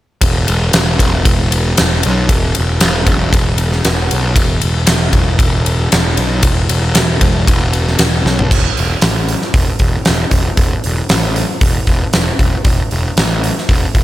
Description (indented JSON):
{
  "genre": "hard rock",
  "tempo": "116 BPM",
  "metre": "4/4",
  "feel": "straight",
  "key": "unclear",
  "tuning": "A4 = 439 Hz",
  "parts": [
    { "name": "fuzz picked electric bass", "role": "bass", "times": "0.2-14.0 s", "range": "E1 to B1", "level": "-15 LUFS", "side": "equal", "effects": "overdrive" },
    { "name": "huge arena drum kit", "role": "drums", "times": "0.2-14.0 s", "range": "crash cymbal, hi-hat, kick drum, ride cymbal, snare drum, toms", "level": "-13 LUFS", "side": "equal", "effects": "none" }
  ],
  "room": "little or no reverb",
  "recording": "none",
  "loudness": "-11 LUFS",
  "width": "side -15 dB against mid",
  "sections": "0.2-8.5 A section; 8.5-14.0 B section",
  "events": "drum fill 8.3",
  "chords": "none"
}